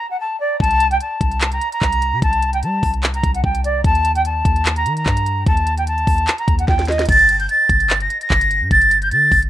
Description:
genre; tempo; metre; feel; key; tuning
hip hop, trap; 148 BPM; 4/4; half-time; G harmonic minor; A4 = 440 Hz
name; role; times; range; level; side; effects
jazz flute; melody; 0.0-9.4 s; D5 to Bb6; -16 LUFS; equal; none
warm 808-style bass; bass; 0.6-9.5 s; G1 to G3; -20 LUFS; equal; none
trap drum kit; drums; 0.6-9.5 s; crash cymbal, handclaps, hi-hat, kick drum, snare drum; -19 LUFS; equal; vintage 12-bit sampler grit
room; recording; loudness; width
digital ambience; rough home demo mix; -14 LUFS; side -12 dB against mid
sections
0.0-7.1 A section; 7.1-9.5 B section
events
break 0.0-0.6; drum fill 6.7-7.1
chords
0.0 D5; 0.6 C5; 3.8 Eb; 7.1 Gmadd9

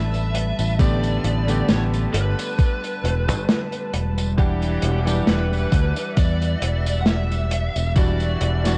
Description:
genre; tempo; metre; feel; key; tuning
vaporwave; 67 BPM; 4/4; swing 55% on 16ths; E minor; A4 = 440 Hz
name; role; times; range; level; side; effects
lead guitar through a small cranked amp; melody; 0.0-8.8 s; G4 to F#5; -31 LUFS; equal; overdrive, tape echo
warm electric grand piano; accompaniment; 0.0-8.8 s; D3 to F#5; -30 LUFS; equal; subtle chorus
warm studio string section; sustained chords; 0.0-8.8 s; G3 to A5; -34 LUFS; equal; vintage 12-bit sampler grit
fingered electric bass; bass; 0.0-8.8 s; E1 to E2; -24 LUFS; equal; none
crunchy breakbeat drum kit; drums; 0.1-8.8 s; hi-hat, snare drum, tambourine; -28 LUFS; equal; vintage 12-bit sampler grit
electronic kick drum; drums; 0.8-8.2 s; none; -20 LUFS; equal; overdrive, vintage 12-bit sampler grit
room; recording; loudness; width
light reverb, small room ambience; cassette tape; -21 LUFS; mono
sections
0.0-8.8 A section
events
none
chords
0.0 A9sus4; 4.4 Em9

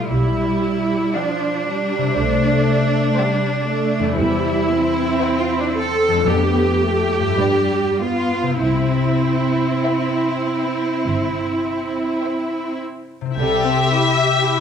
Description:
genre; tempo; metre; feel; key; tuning
classical, slow romantic movement for symphony orchestra; 47-60 BPM; 4/4; rubato; C major; A4 = 440 Hz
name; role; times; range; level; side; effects
dark studio viola section; accompaniment; 0.0-14.6 s; F3 to A4; -23 LUFS; right 3 dB; none
concert harp; arpeggios; 0.0-14.6 s; E2 to D5; -23 LUFS; left 7 dB; none
rich studio cello section; bass; 0.0-14.3 s; C3 to A4; -20 LUFS; right 2 dB; none
warm studio double bass section; bass; 0.1-14.3 s; G1 to G2; -25 LUFS; right 3 dB; none
warm studio violin section; melody; 1.2-14.6 s; E5 to A5; -21 LUFS; left 4 dB; none
warm studio violin section; second line; 1.2-14.6 s; G3 to F5; -24 LUFS; left 3 dB; none
room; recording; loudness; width
wet recital hall reverb, RT60 1.4 s; none; -16 LUFS; side -8 dB against mid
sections
0.0-13.4 A section; 13.4-14.6 A section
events
none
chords
0.1 G7/B; 2.2 C; 4.2 C/E; 6.3 Dm/F; 7.4 G7; 8.6 C

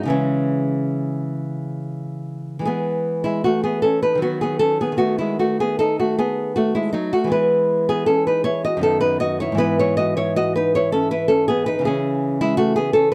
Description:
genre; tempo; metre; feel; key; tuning
classical, baroque-style dance for nylon-string guitar; 69-81 BPM; 3/4; rubato; E major; A4 = 439 Hz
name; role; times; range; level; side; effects
nylon-string guitar; solo; 0.0-13.1 s; F#2 to D#5; -20 LUFS; equal; none
room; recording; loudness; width
moderate spring reverb, RT60 1.3 s; none; -20 LUFS; mono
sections
0.0-2.7 A section; 2.7-13.1 A section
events
none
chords
0.1 C#m; 2.7 E; 4.2 B/D#; 5.0 B7/D#; 7.3 E; 9.6 E/G#; 11.9 C#m

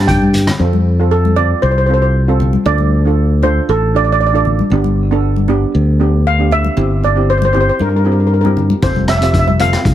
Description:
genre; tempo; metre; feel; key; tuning
calypso; 117 BPM; 4/4; straight; F major; A4 = 440 Hz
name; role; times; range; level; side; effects
modern bright fingered electric bass; bass; 0.0-9.9 s; F1 to G2; -13 LUFS; equal; none
steel pan; melody; 0.1-9.9 s; A4 to G5; -16 LUFS; right 1 dB; none
street-band drum kit; drums; 0.1-0.6, 8.8-9.9 s; hi-hat, kick drum, rim click; -16 LUFS; left 1 dB; none
congas; percussion; 0.2-9.7 s; none; -21 LUFS; left 5 dB; none
steel pan; accompaniment; 0.6-9.9 s; B3 to A4; -20 LUFS; right 4 dB; none
room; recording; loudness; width
little or no reverb; heavily compressed radio sound; -11 LUFS; side -11 dB against mid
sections
0.6-9.9 A section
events
drum fill 0.2-0.6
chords
0.0 N.C.; 0.6 F; 2.7 Dm; 4.7 G; 6.8 C/G; 8.8 Fadd9

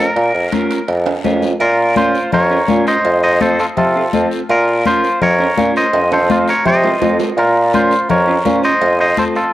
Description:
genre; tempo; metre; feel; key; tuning
latin, cumbia; 166 BPM; 4/4; straight; Bb harmonic minor; A4 = 440 Hz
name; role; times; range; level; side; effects
twangy electric guitar; melody; 0.0-9.5 s; F4 to Eb5; -15 LUFS; equal; spring reverb, cassette tape
electric guitar through a small old amp; accompaniment; 0.0-9.4 s; C4 to C5; -22 LUFS; right 2 dB; cassette tape
warm bassoon; bass; 0.0-9.2 s; F2 to C3; -15 LUFS; equal; none
congas; percussion; 0.2-9.4 s; none; -20 LUFS; left 6 dB; none
guiro; percussion; 0.2-9.5 s; none; -34 LUFS; left 7 dB; none
timbales and cowbell; percussion; 0.2-9.0 s; none; -25 LUFS; right 7 dB; none
room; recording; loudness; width
light reverb, studio reverb; home recording on cassette; -12 LUFS; side -14 dB against mid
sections
0.0-1.6 A section; 1.6-9.5 B section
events
drum fill 1.1-1.6, 5.9-7.4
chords
0.0 Bbm; 3.0 F; 4.5 Bbm; 5.9 F7; 7.4 Bbm; 8.8 F

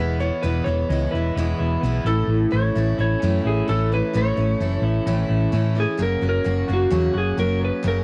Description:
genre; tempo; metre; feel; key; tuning
folk rock and heartland rock; 130 BPM; 4/4; straight; unclear; A4 = 440 Hz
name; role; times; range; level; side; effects
clean lap steel guitar; melody; 0.0-8.0 s; F#4 to C#5; -28 LUFS; equal; cassette tape, tape echo
picked steel-string acoustic guitar; accompaniment; 0.0-8.0 s; E2 to F#4; -28 LUFS; equal; cassette tape
electric guitar through a small old amp; riff; 0.0-8.0 s; E2 to F#4; -32 LUFS; equal; spring reverb, cassette tape
hollow-body short-scale fingered electric bass; bass; 0.0-8.0 s; E1 to A2; -24 LUFS; equal; tube saturation
room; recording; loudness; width
light reverb; home recording on cassette; -21 LUFS; mono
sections
0.0-8.0 A section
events
none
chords
0.0 E; 2.1 A; 6.0 F#

